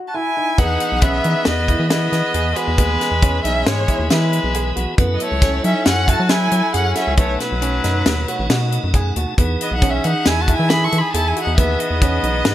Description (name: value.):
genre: progressive instrumental, band music in an uneven meter.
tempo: 136 BPM.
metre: 5/4.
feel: straight.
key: unclear.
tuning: A4 = 437 Hz.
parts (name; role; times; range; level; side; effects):
rich violin; melody; 0.1-12.5 s; B4 to C#6; -22 LUFS; equal; digital delay.
clear flugelhorn; second line; 0.1-12.5 s; F#3 to A4; -25 LUFS; left 2 dB; digital delay.
warm baby grand piano; arpeggios; 0.1-12.5 s; B3 to G#4; -26 LUFS; right 3 dB; wide subtle chorus.
tonewheel organ; accompaniment; 0.6-12.5 s; B2 to A5; -26 LUFS; equal; fast rotary speaker.
rubbery square bass; bass; 0.6-12.5 s; A1 to F#3; -20 LUFS; equal; none.
tight funk drum kit; drums; 0.6-12.5 s; hi-hat, kick drum, snare drum; -18 LUFS; equal; none.
room: light reverb, small room ambience.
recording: bright 1980s-style digital production.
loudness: -15 LUFS.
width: side -12 dB against mid.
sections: 0.6-12.5 A section.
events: break 0.0-0.6; tonewheel organ fill 8.1-9.4.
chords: 0.0 E; 0.6 Emaj7; 5.0 F#m7; 7.2 B7; 9.4 Emaj7.